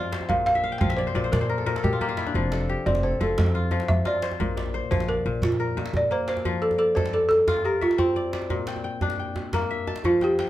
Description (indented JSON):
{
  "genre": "west african traditional, West African string and xylophone music",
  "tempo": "117 BPM (dotted quarters)",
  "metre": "12/8",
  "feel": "straight",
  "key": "F major",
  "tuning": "A4 = 440 Hz",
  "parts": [
    { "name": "balafon", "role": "melody", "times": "0.0-10.5 s", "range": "F4 to G5", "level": "-24 LUFS", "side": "right 1 dB", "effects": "none" },
    { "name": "kora", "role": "arpeggios", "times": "0.0-10.5 s", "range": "Bb2 to A5", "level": "-28 LUFS", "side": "left 4 dB", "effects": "none" },
    { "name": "djembe", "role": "percussion", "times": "0.1-10.5 s", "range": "none", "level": "-30 LUFS", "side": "right 1 dB", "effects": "none" },
    { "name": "upright bass", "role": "bass", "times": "0.3-6.1 s", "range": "F1 to Bb2", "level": "-27 LUFS", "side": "equal", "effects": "none" }
  ],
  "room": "moderate studio reverb, RT60 0.6 s",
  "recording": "none",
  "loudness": "-22 LUFS",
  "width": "side -14 dB against mid",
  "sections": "0.0-6.5 A section; 6.5-10.5 B section",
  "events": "kora fill 0.6-2.3",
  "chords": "0.3 Bb5; 2.3 F; 4.4 Bb; 6.5 F; 8.5 Bb",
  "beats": "| 0.30 0.81 1.32 1.83 | 2.35 2.86 3.37 3.89 | 4.40 4.91 5.43 5.94 | 6.45 6.97 7.48 7.99 | 8.51 9.02 9.54 10.05"
}